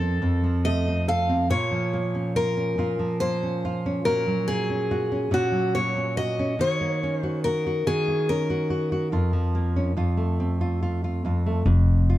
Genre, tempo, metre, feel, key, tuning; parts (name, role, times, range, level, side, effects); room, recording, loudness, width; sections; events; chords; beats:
folk; 71 BPM; 3/4; straight; Bb minor; A4 = 441 Hz
picked steel-string acoustic guitar; melody; 0.0-9.9 s; Gb4 to F5; -26 LUFS; left 1 dB
nylon-string guitar; accompaniment; 0.0-12.2 s; F2 to A4; -24 LUFS; equal
upright bass; bass; 11.7-12.2 s; F1; -19 LUFS; equal
light reverb; dark, warm production; -22 LUFS; side -14 dB against mid
0.0-11.7 A section
0.0 F; 1.5 Bbm; 4.0 Gb/Bb; 6.6 Ebm7; 9.1 Bbm/F; 10.0 F; 11.7 N.C.
0.65 | 1.50 2.35 3.19 | 4.04 4.89 5.73 | 6.58 7.43 8.27 | 9.12 9.97 10.82 | 11.67